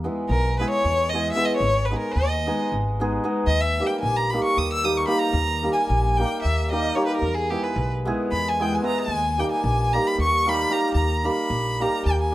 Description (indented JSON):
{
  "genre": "balkan folk, Balkan wedding band",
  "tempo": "225 BPM (eighths)",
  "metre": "7/8",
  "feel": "straight",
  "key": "Eb phrygian dominant",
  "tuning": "A4 = 441 Hz",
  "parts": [
    { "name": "hammered dulcimer", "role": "accompaniment", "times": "0.0-12.3 s", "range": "G3 to G#4", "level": "-25 LUFS", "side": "equal", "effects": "none" },
    { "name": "upright bass", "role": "bass", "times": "0.0-12.3 s", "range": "Ab1 to E2", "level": "-25 LUFS", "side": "equal", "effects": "none" },
    { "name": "clear violin", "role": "melody", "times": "0.3-12.3 s", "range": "G4 to Fb6", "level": "-24 LUFS", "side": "equal", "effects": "plate reverb" }
  ],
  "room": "light reverb",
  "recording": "none",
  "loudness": "-20 LUFS",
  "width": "side -16 dB against mid",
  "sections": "0.0-12.3 A section",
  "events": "violin solo 0.0-12.3",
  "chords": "0.0 E; 1.6 Abm; 3.5 Eb; 7.2 E; 9.1 Eb"
}